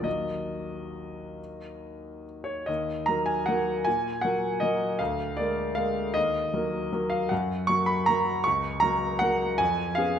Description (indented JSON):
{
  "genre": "classical, piano waltz",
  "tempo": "130-167 BPM",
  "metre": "3/4",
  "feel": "rubato",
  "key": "Eb minor",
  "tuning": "A4 = 440 Hz",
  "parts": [
    { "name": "warm concert grand piano", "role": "solo", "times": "0.0-10.2 s", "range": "Db2 to Db6", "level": "-25 LUFS", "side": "equal", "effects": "none" }
  ],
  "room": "moderate recital hall reverb, RT60 1.4 s",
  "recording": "none",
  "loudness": "-24 LUFS",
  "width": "side -8 dB against mid",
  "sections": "0.0-2.7 A section; 2.7-10.2 B section",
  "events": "none",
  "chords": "0.1 Ebm; 5.0 Bb7/D; 6.2 Ebm; 7.3 Gb; 9.6 Db7/F"
}